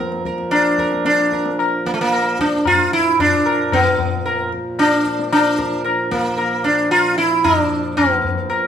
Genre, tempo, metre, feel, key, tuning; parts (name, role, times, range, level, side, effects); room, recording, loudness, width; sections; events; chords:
indian classical, Hindustani; 113 BPM; 4/4; straight; A4 = 442 Hz
sitar; melody; 0.0-8.7 s; A3 to Bb4; -16 LUFS; right 1 dB
pedal harmonium; drone; 0.0-8.7 s; Bb2 to F3; -26 LUFS; equal
tabla; percussion; 0.1-8.7 s; -21 LUFS; left 6 dB
moderate recital hall reverb, RT60 1.4 s; minimal, uncompressed stereo recording; -15 LUFS; side -8 dB against mid
0.0-8.7 A section